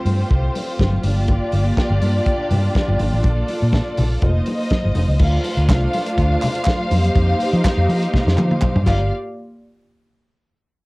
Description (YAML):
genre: disco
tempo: 123 BPM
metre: 4/4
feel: straight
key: G minor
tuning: A4 = 440 Hz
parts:
  - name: warm studio string section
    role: sustained chords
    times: 0.0-9.1 s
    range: A3 to F5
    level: -22 LUFS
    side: equal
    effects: none
  - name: vintage muted fingered electric bass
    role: bass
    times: 0.1-9.1 s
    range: F1 to F3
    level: -18 LUFS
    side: equal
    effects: none
  - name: warm soul drum kit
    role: drums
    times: 0.1-9.0 s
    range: crash cymbal, hi-hat, kick drum, snare drum, toms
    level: -21 LUFS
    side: equal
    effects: cassette tape
  - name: congas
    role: percussion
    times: 0.1-9.1 s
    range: none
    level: -26 LUFS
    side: left 2 dB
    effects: none
  - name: group handclap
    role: percussion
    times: 5.7-9.1 s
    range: none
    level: -30 LUFS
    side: right 2 dB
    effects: none
room: little or no reverb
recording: home recording on cassette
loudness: -16 LUFS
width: side -24 dB against mid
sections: 0.0-5.2 A section; 5.2-9.1 B section; 9.1-10.9 C section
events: drum fill 8.1-9.1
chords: 0.0 Fadd9; 1.0 Gm7; 3.2 Bbmaj7; 4.2 F7sus4; 5.2 Dm7; 6.9 F9sus4; 8.9 Gm7; 9.1 N.C.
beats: 0.31 0.80 | 1.29 1.78 2.27 2.75 | 3.25 3.73 4.22 4.71 | 5.20 5.69 6.18 6.67 | 7.16 7.64 8.13 8.62